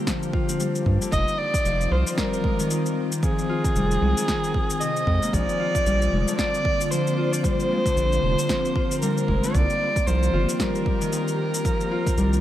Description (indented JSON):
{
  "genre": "organic downtempo",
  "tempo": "114 BPM",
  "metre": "4/4",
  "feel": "swing 58% on 16ths",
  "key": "F dorian",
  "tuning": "A4 = 440 Hz",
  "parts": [
    { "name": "warm kamancheh", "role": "melody", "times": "0.0-12.4 s", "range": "Ab4 to Eb5", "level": "-26 LUFS", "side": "right 1 dB", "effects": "digital delay, shimmer reverb" },
    { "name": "ethereal airy pad", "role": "sustained chords", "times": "0.0-12.4 s", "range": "D3 to G5", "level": "-29 LUFS", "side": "equal", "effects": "ensemble chorus, built-in reverb, sidechain pumping, shimmer reverb" },
    { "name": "Celtic harp", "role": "arpeggios", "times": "0.0-12.4 s", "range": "C3 to F4", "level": "-27 LUFS", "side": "left 3 dB", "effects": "digital delay, shimmer reverb" },
    { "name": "electronic kick drum", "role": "drums", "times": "0.1-12.2 s", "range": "none", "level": "-26 LUFS", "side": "right 1 dB", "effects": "overdrive" },
    { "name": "electronic snare drum and shaker", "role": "drums", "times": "0.1-12.4 s", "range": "none", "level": "-30 LUFS", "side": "left 1 dB", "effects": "overdrive" },
    { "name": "round analog bass", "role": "bass", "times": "0.9-12.4 s", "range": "F1 to G2", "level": "-22 LUFS", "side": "right 1 dB", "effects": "none" }
  ],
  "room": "light reverb, digital ambience",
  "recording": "none",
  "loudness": "-20 LUFS",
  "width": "side -12 dB against mid",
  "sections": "0.0-12.4 A section",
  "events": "none",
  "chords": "0.0 Gm7; 1.1 Fm7; 5.3 Bbadd9; 9.5 Cm7",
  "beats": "0.07 0.60 | 1.12 1.65 2.18 2.70 | 3.23 3.76 4.28 4.81 | 5.33 5.86 6.39 6.91 | 7.44 7.97 8.49 9.02 | 9.55 10.07 10.60 11.12 | 11.65 12.18"
}